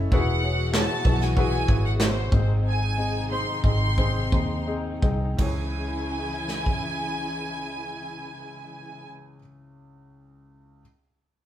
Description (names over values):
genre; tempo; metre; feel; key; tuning
piano-driven pop; 82-97 BPM; 4/4; straight; C# minor; A4 = 440 Hz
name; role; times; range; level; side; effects
warm concert grand piano; accompaniment; 0.0-10.8 s; C#2 to E5; -32 LUFS; left 3 dB; none
vintage muted fingered electric bass; bass; 0.0-9.4 s; E1 to D#2; -26 LUFS; equal; none
warm studio violin section; melody; 0.1-9.1 s; B#4 to B#5; -31 LUFS; right 1 dB; none
dark studio string section; sustained chords; 0.1-9.1 s; B2 to F#4; -34 LUFS; left 2 dB; none
natural country drum kit; drums; 0.1-6.8 s; handclaps, kick drum, ride cymbal, snare drum; -24 LUFS; equal; none
room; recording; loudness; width
light reverb; band playing live in one room; -22 LUFS; side -11 dB against mid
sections
0.1-5.4 A section; 5.4-8.3 B section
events
slowing down 0.1-5.4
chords
0.1 Eadd9; 2.3 G#; 5.4 C#m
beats
| 0.11 0.73 1.36 1.99 | 2.64 3.30 3.97 4.67 | 5.38 6.12 6.84 7.57